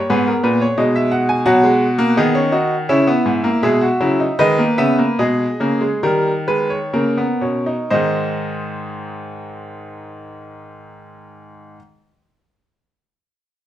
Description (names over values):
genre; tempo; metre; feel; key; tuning
classical, baroque-style 4-part fugue for grand piano; 59-89 BPM; 4/4; straight; G# minor; A4 = 440 Hz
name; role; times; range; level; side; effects
bright baby grand piano; solo; 0.0-11.8 s; G#2 to G#5; -15 LUFS; equal; none
room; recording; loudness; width
moderate large studio reverb, RT60 1.1 s; none; -14 LUFS; side -12 dB against mid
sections
0.0-7.9 A section; 7.9-12.0 B section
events
slowing down 0.1-7.9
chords
0.1 G#m; 1.5 B; 2.9 C#m; 4.4 G#m; 6.0 D#7; 7.9 G#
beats
0.10 0.78 | 1.46 2.16 2.87 3.61 | 4.38 5.18 6.03 6.93 | 7.92 8.93 9.94 10.95